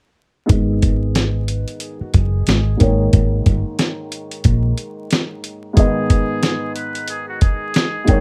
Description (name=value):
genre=hip hop, boom-bap hip-hop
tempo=91 BPM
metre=4/4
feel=swing 58% on 16ths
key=G# harmonic minor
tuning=A4 = 441 Hz
part: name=trumpet with metal mute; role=melody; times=0.5-8.2 s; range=F#4 to B4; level=-31 LUFS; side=equal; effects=high-pass filter, low-pass filter, digital delay
part: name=dark upright piano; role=accompaniment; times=0.5-8.2 s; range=G#2 to G5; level=-25 LUFS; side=equal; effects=high-pass filter, low-pass filter
part: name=hollow-body short-scale fingered electric bass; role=bass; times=0.5-4.7 s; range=F#1 to A#1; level=-20 LUFS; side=equal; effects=none
part: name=dusty soul sampler-style drum kit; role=drums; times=0.5-8.2 s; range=hi-hat, kick drum, snare drum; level=-18 LUFS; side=equal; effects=none
room=light reverb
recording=vinyl crackle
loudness=-18 LUFS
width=mono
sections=0.5-8.2 A section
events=filter sweep 0.5-8.2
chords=0.5 G#m; 2.8 D#7; 5.8 G#m